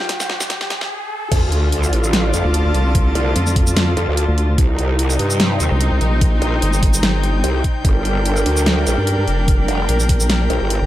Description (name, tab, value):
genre	heavy wobble dubstep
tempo	147 BPM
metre	4/4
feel	swing 54% on 16ths, half-time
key	D phrygian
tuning	A4 = 440 Hz
part	clear grand piano	melody	0.0-0.9 s	G4 to G5	-32 LUFS	equal	dub echo
part	rich studio string section	sustained chords	0.0-10.9 s	C2 to Bb4	-24 LUFS	right 1 dB	sidechain pumping
part	dubstep drum kit	drums	0.0-10.8 s	crash cymbal, hi-hat, shaker, snare drum	-21 LUFS	equal	none
part	riser and sub drop	sound effects	0.0-2.9 s	none	-25 LUFS	equal	none
part	airy breathy pad	texture	0.0-10.9 s	C4 to A5	-26 LUFS	left 1 dB	chorus, sidechain pumping
part	electronic kick drum	drums	0.1-10.2 s	none	-16 LUFS	equal	none
part	growl bass	bass	1.3-10.8 s	F1 to G2	-18 LUFS	equal	chorus, overdrive
part	vowel-sweep wobble bass	bass	2.4-10.9 s	F1 to G2	-17 LUFS	equal	chorus, overdrive
room	little or no reverb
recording	high-pass filter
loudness	-14 LUFS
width	side -14 dB against mid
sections	0.0-1.3 A section; 1.3-10.9 B section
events	build-up 0.0-1.3; drum fill 0.0-0.9; riser 0.0-1.3; filter sweep 0.0-1.3; stop 0.9-1.3; drop 1.3-10.9; impact 1.3-2.9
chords	0.0 Cm; 1.3 Dm; 4.6 Cm; 7.8 Gm